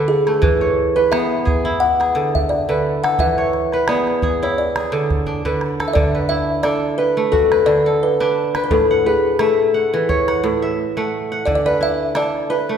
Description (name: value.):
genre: west african traditional, West African string and xylophone music.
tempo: 87 BPM.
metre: 4/4.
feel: swing 55% on 16ths.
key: D lydian.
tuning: A4 = 440 Hz.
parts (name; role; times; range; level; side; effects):
kalimba; melody; 0.0-12.8 s; G#4 to F#5; -18 LUFS; left 2 dB; none.
kora; arpeggios; 0.0-12.8 s; A2 to G#5; -19 LUFS; right 2 dB; none.
calabash; percussion; 0.3-12.3 s; none; -24 LUFS; right 1 dB; none.
room: wet concert hall reverb, RT60 1.7 s.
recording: recorded in a church or concert hall.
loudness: -15 LUFS.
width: side -8 dB against mid.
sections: 0.0-5.9 A section; 5.9-12.8 B section.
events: drum fill 5.3-5.9.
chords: 0.4 E; 1.8 D5; 3.2 E; 4.6 D5; 5.9 D; 8.7 A; 11.5 D.